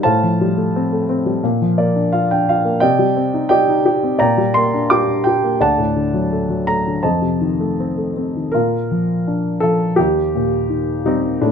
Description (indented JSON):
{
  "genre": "classical, lyrical solo piano",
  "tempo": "85 BPM",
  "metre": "4/4",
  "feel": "rubato",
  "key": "unclear",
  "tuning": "A4 = 439 Hz",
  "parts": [
    { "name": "warm upright piano", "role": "solo", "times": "0.0-11.5 s", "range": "D2 to D6", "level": "-15 LUFS", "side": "equal", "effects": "none" }
  ],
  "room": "light reverb",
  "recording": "close, detailed microphones",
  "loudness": "-15 LUFS",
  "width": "side -7 dB against mid",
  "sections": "0.0-8.5 A section; 8.5-11.5 B section",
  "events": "upright piano fill 1.4-2.8",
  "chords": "0.0 Fadd9/A; 1.4 Bb; 2.8 Cmadd9; 4.2 Gm/Bb; 5.6 D; 7.0 F7; 8.5 Bb; 10.0 Eb",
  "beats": "| 0.03 0.73 1.43 2.12 | 2.81 3.50 4.20 4.90 | 5.61 6.32 7.04 7.79 | 8.54 9.27 9.99 10.70 | 11.41"
}